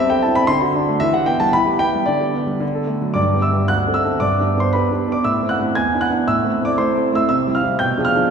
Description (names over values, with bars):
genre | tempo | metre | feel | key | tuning
classical-period piano sonatina | 116 BPM | 2/4 | rubato | G major | A4 = 440 Hz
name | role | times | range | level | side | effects
warm concert grand piano | solo | 0.0-8.3 s | D2 to G#6 | -16 LUFS | equal | none
room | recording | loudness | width
wet church reverb, RT60 3.1 s | recorded in a church or concert hall, studio ambience | -16 LUFS | side -6 dB against mid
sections
0.0-3.2 A section; 3.2-8.3 B section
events
none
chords
0.5 D7; 1.0 Em; 2.1 G/D; 2.6 D; 3.2 G; 3.7 D7; 4.2 G; 5.2 Am; 5.8 E7; 6.3 Am; 7.3 C; 7.8 Bdim7